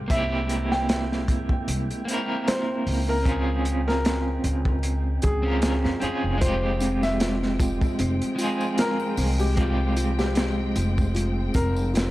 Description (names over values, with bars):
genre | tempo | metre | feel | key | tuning
trip hop | 76 BPM | 4/4 | swing 55% on 16ths | F harmonic minor | A4 = 440 Hz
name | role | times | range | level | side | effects
upright bass | bass | 0.0-12.1 s | F1 to F2 | -26 LUFS | equal | tube saturation
wind-like tuned noise texture | texture | 0.0-12.1 s | Ab3 to G5 | -40 LUFS | right 2 dB | none
felt-muted upright piano | melody | 0.1-12.1 s | G4 to G5 | -31 LUFS | left 1 dB | vintage 12-bit sampler grit, tape echo
electric guitar at the edge of break-up | accompaniment | 0.1-12.1 s | Ab3 to Bb4 | -27 LUFS | right 1 dB | tremolo, tape echo
crunchy breakbeat drum kit | drums | 0.1-12.1 s | hi-hat, kick drum, snare drum | -26 LUFS | equal | none
clear symphonic string section | sustained chords | 6.4-12.1 s | F3 to G5 | -36 LUFS | equal | vintage 12-bit sampler grit
music box | arpeggios | 6.4-12.1 s | C4 to F4 | -30 LUFS | equal | analog delay
tambourine and triangle | percussion | 6.4-12.1 s | none | -44 LUFS | equal | none
room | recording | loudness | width
small room ambience | dry, gritty hardware recording, vinyl crackle | -22 LUFS | side -16 dB against mid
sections
0.0-12.1 A section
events
none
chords
0.1 C7; 3.3 Dbmaj7; 6.4 Fmadd9